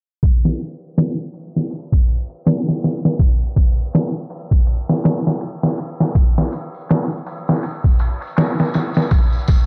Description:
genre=trip hop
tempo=81 BPM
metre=4/4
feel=swing 57% on 16ths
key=none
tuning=none
part: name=trip hop sampler-style drum kit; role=drums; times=0.2-9.7 s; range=kick drum, ride cymbal, snare drum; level=-18 LUFS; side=equal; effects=overdrive, low-pass filter on kick, low-pass filter on cymbals, low-pass filter on snare
part: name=tambourine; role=percussion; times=6.1-9.7 s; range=none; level=-44 LUFS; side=equal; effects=tape echo
room=light reverb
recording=echo-heavy mix, low-pass filter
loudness=-18 LUFS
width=mono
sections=0.2-9.7 A section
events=filter sweep 0.2-9.7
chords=none

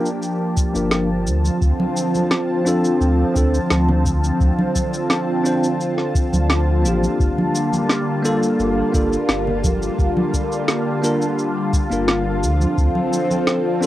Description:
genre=sunset chillout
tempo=86 BPM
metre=4/4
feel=straight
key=G minor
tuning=A4 = 440 Hz
part: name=bell-like tine electric piano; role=accompaniment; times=0.0-13.9 s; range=Bb3 to C5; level=-23 LUFS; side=moving between left 4 dB and right 3 dB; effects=auto-pan, vintage 12-bit sampler grit, low-pass filter, cassette tape, tape echo
part: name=lush unison pad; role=sustained chords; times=0.0-13.9 s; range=D3 to A5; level=-20 LUFS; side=equal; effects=chorus, phaser, cassette tape
part: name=electronic shaker and snare drum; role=drums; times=0.1-13.9 s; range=none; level=-22 LUFS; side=equal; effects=cassette tape
part: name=electronic kick drum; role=drums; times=0.6-12.9 s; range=none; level=-20 LUFS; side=equal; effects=cassette tape
part: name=warm sub bass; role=bass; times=0.7-12.9 s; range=G1 to D2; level=-20 LUFS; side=equal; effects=none
part: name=congas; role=percussion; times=1.4-13.4 s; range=none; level=-25 LUFS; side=right 1 dB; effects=none
room=wet booth ambience, RT60 0.2 s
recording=home recording on cassette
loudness=-16 LUFS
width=side -14 dB against mid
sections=0.0-13.9 A section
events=filter sweep on tine electric piano 0.0-13.9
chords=0.0 Gm9; 1.3 Dm7; 7.2 Gm9; 12.4 Dm7

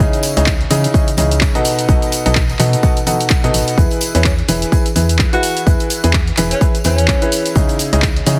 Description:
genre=piano house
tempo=127 BPM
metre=4/4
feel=swing 58% on 16ths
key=E major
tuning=A4 = 441 Hz
part: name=clear grand piano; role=riff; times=0.0-8.4 s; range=B2 to D#5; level=-21 LUFS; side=equal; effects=sidechain pumping, dub echo
part: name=organ-like FM bass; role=bass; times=0.0-8.4 s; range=E1 to C#3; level=-19 LUFS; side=equal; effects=sidechain pumping
part: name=electronic kick drum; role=drums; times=0.0-8.1 s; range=none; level=-18 LUFS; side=equal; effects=none
part: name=punchy analog drum machine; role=drums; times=0.0-8.4 s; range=handclaps, hi-hat, shaker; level=-23 LUFS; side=equal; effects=none
part: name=tambourine and congas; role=percussion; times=0.0-8.4 s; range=none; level=-27 LUFS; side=equal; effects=none
part: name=warm tenor saxophone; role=melody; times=4.1-7.5 s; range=C#4 to F#4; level=-24 LUFS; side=equal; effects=dub echo
room=digital ambience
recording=heavily compressed radio sound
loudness=-14 LUFS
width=mono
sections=0.0-8.4 A section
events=none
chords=0.0 C#madd9; 1.6 B7; 3.8 E; 7.6 C#madd9

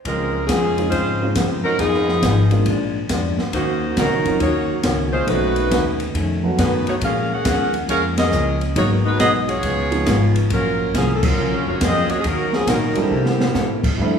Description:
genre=jazz, big band swing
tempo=138 BPM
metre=4/4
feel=swing 66% on 8ths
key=Db major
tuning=A4 = 438 Hz
part: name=mellow saxophone section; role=melody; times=0.1-13.9 s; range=F3 to Gb5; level=-20 LUFS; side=equal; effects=none
part: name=vintage hollow-body jazz guitar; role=accompaniment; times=0.1-14.2 s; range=Gb2 to A4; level=-24 LUFS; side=left 3 dB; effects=none
part: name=upright bass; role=bass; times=0.1-14.2 s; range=Gb1 to C3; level=-22 LUFS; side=left 1 dB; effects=none
part: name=open jazz drum kit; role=drums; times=0.1-14.1 s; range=crash cymbal, hi-hat, kick drum, ride cymbal, snare drum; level=-24 LUFS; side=equal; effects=none
part: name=warm upright piano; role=accompaniment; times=0.8-14.2 s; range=F3 to E5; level=-25 LUFS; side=right 3 dB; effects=none
part: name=dark saxophone section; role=sustained chords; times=14.0-14.2 s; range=D3 to E4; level=-25 LUFS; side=left 1 dB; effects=none
room=wet recital hall reverb, RT60 1.7 s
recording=recorded in a church or concert hall, studio reverb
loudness=-16 LUFS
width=side -7 dB against mid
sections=0.1-14.0 A section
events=band accent 8.1, 11.2; drum fill 13.1-13.6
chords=0.1 Dbmaj7; 1.8 Fm7b5; 2.7 Bb7; 3.5 Ebm7; 5.3 Cb9; 7.0 Bbm7; 8.8 Abm7; 9.6 Db7; 10.5 Gbmaj7; 12.2 Ebm7; 13.1 C6

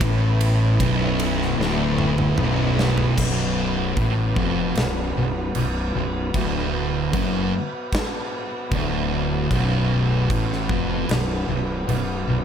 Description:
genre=stoner and doom metal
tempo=76 BPM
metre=4/4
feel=straight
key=B minor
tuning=A4 = 440 Hz
part: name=mellow tonewheel organ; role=sustained chords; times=0.0-12.4 s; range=B3 to B4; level=-31 LUFS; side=equal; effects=slow rotary speaker
part: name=thick fuzz guitar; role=riff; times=0.0-12.4 s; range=B1 to A2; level=-24 LUFS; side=left 6 dB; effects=distortion
part: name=thick fuzz guitar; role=riff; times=0.0-12.4 s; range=B1 to A2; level=-25 LUFS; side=right 7 dB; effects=distortion
part: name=thick fuzz guitar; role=riff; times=0.0-3.2 s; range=B1 to A2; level=-28 LUFS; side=equal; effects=distortion
part: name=fuzz fingered electric bass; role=bass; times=0.0-12.4 s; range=B0 to A1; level=-27 LUFS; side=equal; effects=overdrive, tube saturation
part: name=big rock drum kit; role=drums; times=0.0-12.1 s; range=crash cymbal, kick drum, ride cymbal, snare drum, toms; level=-27 LUFS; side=equal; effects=none
room=light reverb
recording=none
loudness=-19 LUFS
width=side -8 dB against mid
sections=0.0-3.2 A section; 3.2-12.4 B section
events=drum fill 1.6-3.2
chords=0.0 Bm

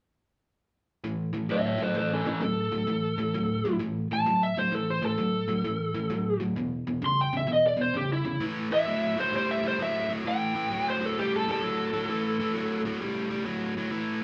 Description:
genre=blues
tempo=130 BPM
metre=4/4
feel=swing 66% on 8ths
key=unclear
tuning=A4 = 440 Hz
part: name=biting overdriven guitar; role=riff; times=1.0-14.2 s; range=E2 to G3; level=-31 LUFS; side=equal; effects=none
part: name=lead guitar through a small cranked amp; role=melody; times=1.5-12.8 s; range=C#4 to C6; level=-30 LUFS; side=equal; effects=overdrive
room=wet studio reverb, RT60 0.8 s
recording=band playing live in one room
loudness=-28 LUFS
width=mono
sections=1.0-8.4 A section; 8.4-14.2 B section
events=none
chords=1.0 A5; 6.6 E5; 8.4 A5

